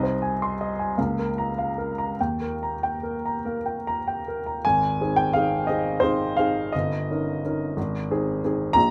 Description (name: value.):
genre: classical, romantic character piece for solo piano.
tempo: 47-61 BPM (dotted quarters).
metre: 6/8.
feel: rubato.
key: Ab major.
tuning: A4 = 440 Hz.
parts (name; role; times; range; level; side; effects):
warm upright piano; solo; 0.0-8.9 s; G1 to C6; -25 LUFS; equal; none.
room: light reverb.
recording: close, detailed microphones.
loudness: -25 LUFS.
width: mono.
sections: 0.0-4.6 A section; 4.6-8.9 B section.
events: none.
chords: 0.0 Ab/C; 1.0 Bbm/Db; 2.2 Eb; 4.6 Ab; 6.7 Eb7/G; 7.8 Ab.